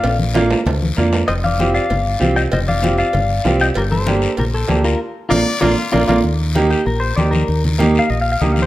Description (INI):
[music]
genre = latin, cumbia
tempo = 193 BPM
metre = 4/4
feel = straight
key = unclear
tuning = A4 = 437 Hz
[part]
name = clean electric guitar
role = melody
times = 0.0-8.7 s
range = F4 to G5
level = -20 LUFS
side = left 3 dB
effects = spring reverb
[part]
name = fingered electric bass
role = bass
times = 0.0-8.7 s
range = F1 to F2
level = -19 LUFS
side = equal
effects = none
[part]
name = congas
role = percussion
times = 0.0-8.7 s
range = none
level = -23 LUFS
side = left 2 dB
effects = none
[part]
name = cowbell and timbales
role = percussion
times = 0.0-6.2 s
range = none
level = -26 LUFS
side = right 4 dB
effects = none
[part]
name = guiro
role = percussion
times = 0.0-8.7 s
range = none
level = -29 LUFS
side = left 6 dB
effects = none
[part]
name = bright upright piano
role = accompaniment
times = 0.3-8.6 s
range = Bb3 to G4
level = -18 LUFS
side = right 3 dB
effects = none
[part]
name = brilliant trumpet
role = second line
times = 5.3-6.2 s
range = F4 to D5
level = -22 LUFS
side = left 4 dB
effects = none
[sound]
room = light reverb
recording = close, detailed microphones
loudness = -14 LUFS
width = side -15 dB against mid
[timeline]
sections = 0.0-6.2 A section; 6.2-8.7 B section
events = drum fill 0.0-1.3, 5.0-6.2; band accent 5.0-6.2; clean electric guitar solo 6.2-8.7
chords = 0.0 Bb; 1.3 Fsus2; 3.8 Gm; 5.0 Bb; 6.2 Eb